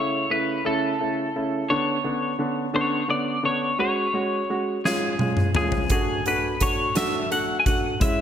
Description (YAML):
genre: six-eight pop ballad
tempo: 57 BPM (dotted quarters)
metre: 6/8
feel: straight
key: unclear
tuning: A4 = 440 Hz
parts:
  - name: twelve-string electric guitar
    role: melody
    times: 0.0-8.2 s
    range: G#4 to G#5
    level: -25 LUFS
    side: left 2 dB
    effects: spring reverb, digital delay
  - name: clear concert grand piano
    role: accompaniment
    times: 0.0-8.2 s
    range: C#3 to F#4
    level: -25 LUFS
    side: right 1 dB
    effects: none
  - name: huge arena drum kit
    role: drums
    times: 4.9-8.2 s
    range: hi-hat, kick drum, snare drum, toms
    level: -24 LUFS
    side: equal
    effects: none
room: light reverb, studio reverb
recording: bright 1980s-style digital production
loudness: -21 LUFS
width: side -9 dB against mid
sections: 0.0-8.2 A section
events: drum fill 4.8-5.9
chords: 0.0 A/C#; 1.7 Bmadd9/D; 3.8 C#sus4; 4.8 C#; 5.9 D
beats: 0.65 | 1.69 2.74 | 3.79 4.84 | 5.90 6.96 | 8.01